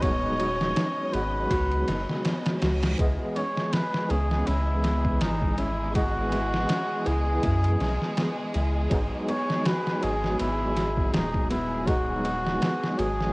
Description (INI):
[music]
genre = trip hop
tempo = 81 BPM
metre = 4/4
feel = swing 56% on 16ths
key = C# minor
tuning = A4 = 441 Hz
[part]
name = trumpet with cup mute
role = melody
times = 0.0-13.3 s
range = D#4 to C#5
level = -30 LUFS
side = equal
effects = cassette tape, tape echo
[part]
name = overdriven tine electric piano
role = accompaniment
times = 0.0-13.3 s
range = D#3 to D#5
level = -31 LUFS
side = equal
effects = fast tremolo, cassette tape, tape echo
[part]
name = warm studio violin section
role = sustained chords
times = 0.0-13.3 s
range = G#3 to D#5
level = -36 LUFS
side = equal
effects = cassette tape
[part]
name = nylon-string guitar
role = arpeggios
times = 0.0-13.3 s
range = E3 to F#4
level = -34 LUFS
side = left 1 dB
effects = cassette tape, tape echo
[part]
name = soft dub sub bass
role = bass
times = 0.0-13.3 s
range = D#1 to F#2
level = -28 LUFS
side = equal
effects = none
[part]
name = trip hop sampler-style drum kit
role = drums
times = 0.0-13.3 s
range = kick drum, ride cymbal, snare drum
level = -29 LUFS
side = equal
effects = overdrive, cassette tape
[part]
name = reverse cymbal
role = sound effects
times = 2.6-3.0 s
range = none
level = -41 LUFS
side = right 3 dB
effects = none
[sound]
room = light reverb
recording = home recording on cassette, lossy compression artefacts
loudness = -23 LUFS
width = side -26 dB against mid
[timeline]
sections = 0.0-13.3 A section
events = reverse cymbal 2.6-3.0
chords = 0.0 G#m7; 3.0 C#m7; 8.9 G#m7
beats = | 0.02 0.77 1.50 2.25 | 2.99 3.73 4.47 5.21 | 5.95 6.69 7.43 8.17 | 8.91 9.65 10.39 11.13 | 11.88 12.62